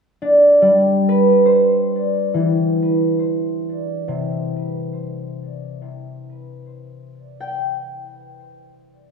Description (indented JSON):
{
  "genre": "ambient",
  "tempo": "free time",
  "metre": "none",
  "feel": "none",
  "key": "C major",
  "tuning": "A4 = 439 Hz",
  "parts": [
    { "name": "concert harp", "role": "solo", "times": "0.2-9.1 s", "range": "C3 to G5", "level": "-16 LUFS", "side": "equal", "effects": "ping-pong delay" }
  ],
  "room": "wet concert hall reverb, RT60 1.8 s, studio reverb",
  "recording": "none",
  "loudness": "-15 LUFS",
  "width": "side -6 dB against mid",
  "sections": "0.0-9.1 A section",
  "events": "none",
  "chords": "0.0 Cmaj7"
}